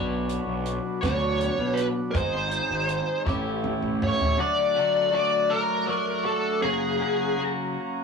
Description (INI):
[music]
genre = psychedelic rock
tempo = 54 BPM (dotted quarters)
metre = 6/8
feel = straight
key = unclear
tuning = A4 = 438 Hz
[part]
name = combo organ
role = sustained chords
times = 0.0-8.0 s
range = Ab3 to A#5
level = -37 LUFS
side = right 5 dB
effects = none
[part]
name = twelve-string electric guitar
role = riff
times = 0.0-8.0 s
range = F#2 to C#5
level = -28 LUFS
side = left 2 dB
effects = phaser
[part]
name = fuzz picked electric bass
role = bass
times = 0.0-4.1 s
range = Ab1 to B2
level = -30 LUFS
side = right 2 dB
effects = overdrive
[part]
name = damped 70s drum kit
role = drums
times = 0.3-4.4 s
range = hi-hat, kick drum, snare drum, toms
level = -29 LUFS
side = equal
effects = none
[part]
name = fuzz lead guitar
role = melody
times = 1.0-7.4 s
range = Ab4 to D5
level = -24 LUFS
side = left 1 dB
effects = wah, distortion
[sound]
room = wet small room reverb, RT60 0.5 s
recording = rough rehearsal-room recording, warm saturation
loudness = -23 LUFS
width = side -5 dB against mid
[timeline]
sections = 0.0-4.4 A section; 4.4-8.0 B section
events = drum fill 3.3-4.4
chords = 0.0 Bmadd9; 2.1 Ab; 3.3 A7; 4.4 D; 6.6 F#